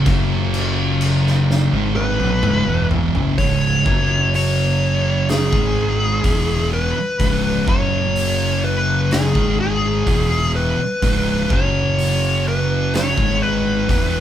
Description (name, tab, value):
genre	stoner and doom metal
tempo	63 BPM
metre	4/4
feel	straight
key	C# minor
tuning	A4 = 440 Hz
part	thick fuzz guitar	riff	0.0-14.2 s	C#2 to G#3	-24 LUFS	left 6 dB	distortion
part	thick fuzz guitar	riff	0.0-14.2 s	C#2 to G#3	-21 LUFS	right 4 dB	distortion
part	fuzz fingered electric bass	bass	0.0-14.2 s	C#1 to B1	-23 LUFS	equal	overdrive
part	oversized low-tuned drum kit	drums	0.1-14.1 s	crash cymbal, hi-hat, kick drum, snare drum, toms	-23 LUFS	equal	none
part	fuzz lead guitar	melody	2.0-14.2 s	G#4 to C#5	-21 LUFS	left 2 dB	wah, distortion
room	moderate large studio reverb, RT60 1.2 s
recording	band playing live in one room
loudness	-15 LUFS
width	side -10 dB against mid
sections	0.0-3.4 A section; 3.4-14.2 B section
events	drum fill 1.5-3.4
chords	0.1 F#5; 1.7 C#m; 3.4 C#5; 3.9 F#5; 5.5 C#m; 7.7 F#5; 9.3 C#m; 11.5 F#5; 13.2 C#m